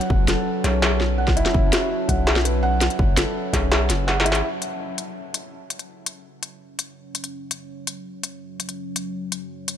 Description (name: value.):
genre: half-time drum and bass.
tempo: 166 BPM.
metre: 4/4.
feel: half-time.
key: F# minor.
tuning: A4 = 439 Hz.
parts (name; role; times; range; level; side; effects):
deep dark ambient pad; sustained chords; 0.0-9.8 s; F#3 to A5; -30 LUFS; right 1 dB; chorus, built-in reverb, sidechain pumping.
felt-muted upright piano; arpeggios; 0.0-4.5 s; C#4 to F#5; -26 LUFS; right 1 dB; ping-pong delay.
industrial drum kit; drums; 0.0-9.8 s; hi-hat, snare drum; -23 LUFS; left 1 dB; none.
long sustained 808-style bass; bass; 0.1-4.4 s; F#1 to B1; -22 LUFS; equal; none.
electronic kick drum; drums; 0.1-3.6 s; none; -22 LUFS; equal; none.
room: light reverb, digital ambience.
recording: none.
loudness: -20 LUFS.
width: side -10 dB against mid.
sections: 0.0-4.4 A section; 4.4-9.8 B section.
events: drop 0.0-4.4; kick drops out 3.7-4.4; drum fill 4.1-4.4.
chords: 0.0 F#5.